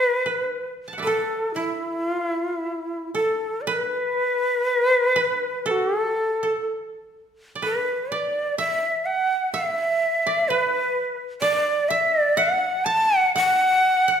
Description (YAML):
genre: japanese traditional, Japanese chamber music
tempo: 56-64 BPM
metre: 4/4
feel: rubato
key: E suspended pentatonic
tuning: A4 = 441 Hz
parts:
  - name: breathy bright shakuhachi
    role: melody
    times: 0.0-14.2 s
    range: E4 to A5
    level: -21 LUFS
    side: equal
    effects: none
  - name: koto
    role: second line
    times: 0.0-14.2 s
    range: E4 to A5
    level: -27 LUFS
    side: right 3 dB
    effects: none
room: wet recital hall reverb, RT60 1.3 s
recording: recorded in a church or concert hall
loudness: -20 LUFS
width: side -8 dB against mid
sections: 0.0-3.7 A section; 3.7-14.2 B section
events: none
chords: none